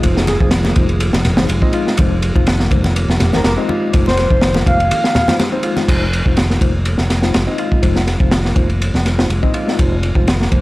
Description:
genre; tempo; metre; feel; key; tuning
breakbeat, breaks; 123 BPM; 4/4; swing 54% on 16ths; unclear; A4 = 439 Hz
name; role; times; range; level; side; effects
warbly tape-like pad; sustained chords; 0.0-5.9 s; F3 to Ab4; -30 LUFS; equal; none
bright reed electric piano; riff; 0.0-10.6 s; Eb3 to F4; -22 LUFS; equal; overdrive, tube saturation, vintage 12-bit sampler grit, analog delay
mellow tine electric piano; stabs; 0.0-10.6 s; Ab3 to Eb5; -22 LUFS; left 2 dB; medium stereo tremolo, vintage 12-bit sampler grit, analog delay
modern bright fingered electric bass; bass; 0.0-10.6 s; F1; -17 LUFS; equal; none
crunchy breakbeat drum kit; drums; 0.0-10.6 s; crash cymbal, kick drum, ride cymbal, snare drum; -16 LUFS; equal; none
breathy flute-like synth lead; melody; 0.3-5.4 s; Ab4 to F5; -18 LUFS; equal; chorus, tremolo, telephone sound, analog delay
congas; percussion; 0.3-5.9 s; none; -22 LUFS; left 1 dB; none
room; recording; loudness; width
light reverb; dry, gritty hardware recording, vinyl crackle; -12 LUFS; side -19 dB against mid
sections
0.0-5.9 A section; 5.9-10.6 B section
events
drop 0.0-5.9; break 4.9-5.9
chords
0.0 Fm7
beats
| 0.03 0.52 1.01 1.50 | 1.98 2.47 2.96 3.45 | 3.93 4.42 4.91 5.40 | 5.89 6.37 6.86 7.35 | 7.84 8.32 8.81 9.30 | 9.79 10.28

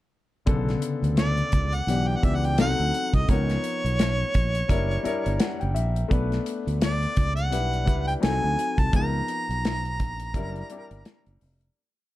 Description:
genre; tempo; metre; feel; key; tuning
lush 1970s-style soul; 85 BPM; 4/4; swing 58% on 16ths; unclear; A4 = 440 Hz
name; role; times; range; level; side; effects
warm baby grand piano; accompaniment; 0.5-11.8 s; C#3 to A#5; -30 LUFS; left 4 dB; none
fingered electric bass; bass; 0.5-11.7 s; E#1 to D2; -26 LUFS; equal; none
modern studio drum kit; drums; 0.5-11.7 s; hi-hat, kick drum, snare drum; -25 LUFS; equal; none
mellow harmonica; melody; 1.2-11.4 s; C#5 to A#5; -29 LUFS; right 1 dB; none
room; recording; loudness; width
small room reverb; dark, warm production; -22 LUFS; side -16 dB against mid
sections
0.5-11.8 verse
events
grand piano fill 4.7-6.1; fade-out 8.9-11.8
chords
0.5 Bm9; 1.9 Em7/B; 2.6 Cdim7; 3.3 C#13; 4.7 F#7b9b13; 6.1 Bm9; 7.5 Em7/B; 8.2 Cdim7; 8.9 C#13; 10.3 F#7b9b13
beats
| 0.47 1.18 1.88 2.59 | 3.29 4.00 4.70 5.41 | 6.11 6.82 7.52 8.23 | 8.93 9.64 10.35 11.05

